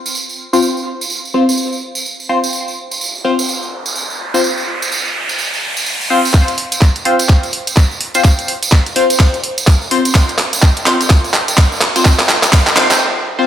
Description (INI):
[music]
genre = bass house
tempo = 126 BPM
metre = 4/4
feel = swing 60% on 16ths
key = unclear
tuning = A4 = 440 Hz
[part]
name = tambourine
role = percussion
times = 0.1-13.0 s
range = none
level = -21 LUFS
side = right 4 dB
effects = none
[part]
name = band-passed chord stab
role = stabs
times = 0.5-13.4 s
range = C4 to C5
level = -17 LUFS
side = left 2 dB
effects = phaser, wide subtle chorus, sidechain pumping, diffuse ambient delay
[part]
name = riser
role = sound effects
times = 3.1-6.3 s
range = none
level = -21 LUFS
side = right 1 dB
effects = none
[part]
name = electronic kick drum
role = drums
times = 6.3-12.6 s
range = none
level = -9 LUFS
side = equal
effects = overdrive, studio reverb
[part]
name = garage drum kit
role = drums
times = 6.3-13.0 s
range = handclaps, hi-hat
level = -15 LUFS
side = right 1 dB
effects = overdrive, studio reverb
[sound]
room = wet plate reverb, RT60 2.1 s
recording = dreamy mix soaked in reverb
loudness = -12 LUFS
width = side -10 dB against mid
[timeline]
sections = 0.0-6.3 A section; 6.3-13.5 B section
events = filter sweep on synth stab 0.0-6.3; riser 3.1-6.3; build-up 6.3-13.5; drum fill 6.3-13.0; break 13.0-13.5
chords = 0.0 F5